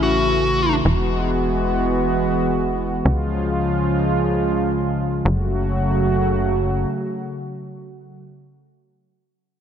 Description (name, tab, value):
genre	synthwave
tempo	free time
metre	none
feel	none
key	F# minor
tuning	A4 = 443 Hz
part	dark smooth lead guitar	melody	0.0-0.7 s	F#4	-21 LUFS	left 2 dB	overdrive, ping-pong delay
part	warm analog pad	sustained chords	0.0-8.2 s	C#3 to F#4	-20 LUFS	equal	chorus
part	tight sequencer bass	bass	0.0-6.9 s	E1 to C#2	-24 LUFS	equal	none
room	moderate lush hall reverb, RT60 2.1 s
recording	bright 1980s-style digital production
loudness	-18 LUFS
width	side -8 dB against mid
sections	0.0-5.3 A section; 5.3-7.5 B section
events	filter sweep on analog synth bass 0.0-5.3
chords	0.0 A; 0.9 Eadd9; 3.1 C#; 5.3 F#m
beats	free time